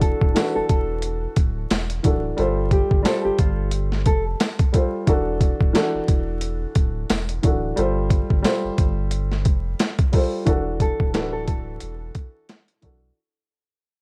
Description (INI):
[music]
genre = hip hop, boom-bap hip-hop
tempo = 89 BPM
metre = 4/4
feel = swing 57% on 16ths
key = unclear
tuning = A4 = 441 Hz
[part]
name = nylon-string guitar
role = melody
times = 0.0-4.2, 10.8-12.0 s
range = F4 to B4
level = -29 LUFS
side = equal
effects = high-pass filter, low-pass filter, delay
[part]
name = dark upright piano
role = accompaniment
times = 0.0-13.2 s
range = E3 to C5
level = -27 LUFS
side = equal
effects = cassette tape, high-pass filter, low-pass filter
[part]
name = warm sub bass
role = bass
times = 0.0-13.1 s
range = D1 to B1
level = -29 LUFS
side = equal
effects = none
[part]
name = boom bap sampler-style drum kit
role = drums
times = 0.0-13.0 s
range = hi-hat, kick drum, snare drum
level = -22 LUFS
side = equal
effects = none
[part]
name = tambourine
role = percussion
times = 0.4-10.0 s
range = none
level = -44 LUFS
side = equal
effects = none
[sound]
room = small room ambience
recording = worn, warbling old tape, cassette tape, vinyl crackle, warbly pitch drift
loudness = -21 LUFS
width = mono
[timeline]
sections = 0.0-10.5 A section; 10.5-13.2 B section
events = fade-out 10.5-13.2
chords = 0.0 E9sus4; 2.4 G9sus4; 5.1 E9sus4; 7.8 G9sus4; 10.5 E9sus4